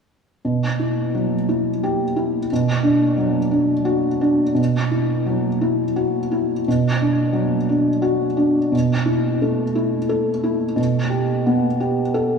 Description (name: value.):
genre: neoclassical minimalist piano.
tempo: 88 BPM.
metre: 3/4.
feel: rubato.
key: unclear.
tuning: A4 = 440 Hz.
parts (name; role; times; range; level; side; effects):
felt-muted upright piano; solo; 0.4-12.4 s; B2 to A4; -17 LUFS; equal; none.
room: wet church reverb, RT60 3.2 s.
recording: recorded in a church or concert hall.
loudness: -17 LUFS.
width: side -6 dB against mid.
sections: 0.4-4.6 A section; 4.6-12.4 B section.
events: none.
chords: 0.4 Emadd9/B; 2.5 Bm; 4.6 Esus2/B; 6.7 Bm; 8.7 A5/B; 10.8 Gadd9/B.